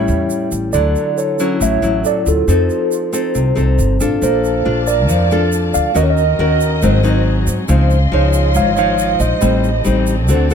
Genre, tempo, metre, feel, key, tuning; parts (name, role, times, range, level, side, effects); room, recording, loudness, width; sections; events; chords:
bossa nova; 138 BPM; 4/4; straight; Bb major from 4.2 s; A4 = 440 Hz
mellow tine electric piano; melody; 0.0-9.8 s; A4 to F5; -18 LUFS; right 2 dB; medium stereo tremolo
mellow hollow jazz flute; second line; 0.0-9.8 s; F4 to D5; -25 LUFS; right 6 dB
nylon-string guitar; accompaniment; 0.0-10.5 s; Ab2 to Bb4; -18 LUFS; left 4 dB
upright bass; bass; 0.0-10.5 s; G1 to Ab2; -16 LUFS; right 1 dB
egg shaker; percussion; 0.1-10.5 s; -27 LUFS; right 5 dB
warm studio string section; sustained chords; 4.2-10.5 s; Bb3 to C6; -26 LUFS; left 3 dB
little or no reverb; close, detailed microphones; -12 LUFS; side -7 dB against mid
0.0-4.2 A section; 4.2-10.5 B section
0.0 A7; 0.7 Dmaj9; 2.5 F7; 4.2 Bbmaj7; 6.0 Ebm7; 6.8 Ab7; 7.7 Dbmaj9; 9.4 Am7b5